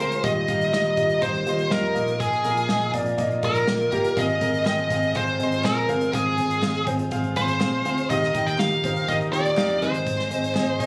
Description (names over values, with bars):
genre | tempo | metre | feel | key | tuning
piano-driven pop | 122 BPM | 4/4 | straight | unclear | A4 = 442 Hz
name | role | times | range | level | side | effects
high-gain lead guitar | melody | 0.0-10.9 s | Ab4 to G5 | -26 LUFS | equal | distortion, plate reverb
clear concert grand piano | accompaniment | 0.0-10.9 s | Ab2 to Ab5 | -28 LUFS | equal | plate reverb
dark studio string section | sustained chords | 0.0-10.9 s | Eb3 to Bb4 | -40 LUFS | equal | none
vintage muted picked electric bass | bass | 0.0-10.9 s | G1 to F2 | -32 LUFS | equal | none
natural country drum kit | drums | 0.1-10.9 s | hi-hat, kick drum, snare drum | -33 LUFS | equal | none
group handclap | percussion | 4.7-10.7 s | none | -47 LUFS | equal | none
room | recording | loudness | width
moderate studio reverb, RT60 0.8 s | recorded on a phone in the room, club reverb, compression | -23 LUFS | mono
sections
0.0-10.9 A section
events
none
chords
0.2 Ebadd9; 2.0 Bbsus4; 4.2 Ab6; 8.1 Ebadd9; 9.8 Ab